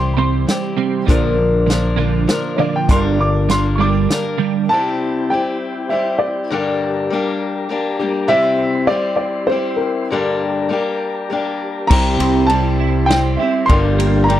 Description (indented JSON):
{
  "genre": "folk rock and heartland rock",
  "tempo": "100 BPM",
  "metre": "3/4",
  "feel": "straight",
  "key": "unclear",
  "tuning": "A4 = 441 Hz",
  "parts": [
    { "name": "dark concert grand piano", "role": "melody", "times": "0.0-14.4 s", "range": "Bb4 to D6", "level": "-20 LUFS", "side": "equal", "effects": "slapback echo" },
    { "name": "picked steel-string acoustic guitar", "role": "accompaniment", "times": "0.0-14.4 s", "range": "G2 to Bb4", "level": "-20 LUFS", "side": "left 4 dB", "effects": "none" },
    { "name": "mellow tonewheel organ", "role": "sustained chords", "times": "0.0-14.4 s", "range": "E3 to C6", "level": "-28 LUFS", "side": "left 1 dB", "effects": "slow rotary speaker" },
    { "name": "twelve-string electric guitar", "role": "riff", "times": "0.0-4.7, 11.9-14.4 s", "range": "G2 to E4", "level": "-20 LUFS", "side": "right 10 dB", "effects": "analog chorus" },
    { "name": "fingered electric bass", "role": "bass", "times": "0.0-4.1, 11.9-14.4 s", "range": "G1 to C2", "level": "-17 LUFS", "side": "equal", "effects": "none" },
    { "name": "vintage drum kit", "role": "drums", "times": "0.5-4.2, 11.9-14.4 s", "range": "crash cymbal, hi-hat, kick drum, ride cymbal, snare drum", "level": "-18 LUFS", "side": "equal", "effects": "none" }
  ],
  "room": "little or no reverb",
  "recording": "dry, close 1970s-style studio recording",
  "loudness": "-15 LUFS",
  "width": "side -12 dB against mid",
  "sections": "0.0-4.7 A section; 4.7-14.4 B section",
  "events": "grand piano solo 0.0-4.7",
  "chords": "0.0 C; 1.1 Bb; 2.9 Gm; 4.7 C; 6.5 Gm; 8.3 C; 10.1 Gm; 11.9 C; 13.7 Gm",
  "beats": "0.48 | 1.09 1.69 2.29 | 2.90 3.50 4.10 | 4.70 5.30 5.91 | 6.51 7.11 7.71 | 8.31 8.91 9.51 | 10.11 10.70 11.30 | 11.90 12.50 13.10 | 13.70 14.30"
}